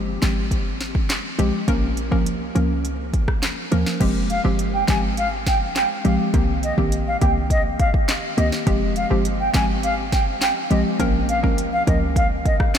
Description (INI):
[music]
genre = dancehall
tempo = 103 BPM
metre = 4/4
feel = straight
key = F minor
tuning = A4 = 440 Hz
[part]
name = short 808-style bass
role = bass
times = 0.0-12.8 s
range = F1 to Eb2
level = -25 LUFS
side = equal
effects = none
[part]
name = hollow square pluck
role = accompaniment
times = 0.2-12.0 s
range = Eb3 to Bb4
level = -24 LUFS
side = equal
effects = chorus
[part]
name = afro-pop drum kit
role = drums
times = 0.2-12.8 s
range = crash cymbal, handclaps, hi-hat, kick drum, rim click, snare drum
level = -23 LUFS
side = equal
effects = none
[part]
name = mellow concert flute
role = melody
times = 4.3-12.6 s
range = Eb5 to Ab5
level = -23 LUFS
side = equal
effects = ping-pong delay
[sound]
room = moderate huge ambient reverb, RT60 7.2 s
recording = dreamy mix soaked in reverb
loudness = -18 LUFS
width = side -8 dB against mid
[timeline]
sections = 0.0-4.0 A section; 4.0-12.8 B section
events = none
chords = 0.0 Fmadd9; 1.7 Bbm; 4.0 Fmadd9; 6.3 Cm7; 8.7 Fmadd9; 11.0 Bbm